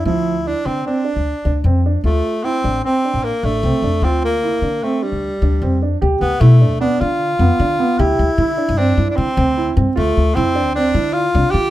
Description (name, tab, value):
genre	progressive instrumental, band music in an uneven meter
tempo	151 BPM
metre	5/4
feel	straight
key	D minor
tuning	A4 = 440 Hz
part	clear tenor saxophone	melody	0.0-11.7 s	G3 to G4	-19 LUFS	left 1 dB	plate reverb
part	warm grand piano	arpeggios	0.1-11.7 s	F3 to G4	-20 LUFS	right 4 dB	none
part	upright bass	bass	0.1-11.7 s	A1 to D3	-17 LUFS	left 1 dB	none
room	light reverb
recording	none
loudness	-14 LUFS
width	side -14 dB against mid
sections	0.0-6.0 A section; 6.0-11.7 B section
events	none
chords	0.1 Dm9; 2.0 Dm7; 4.0 Gm7/D; 6.0 G7/D; 8.0 Cadd9/D; 10.0 Dm7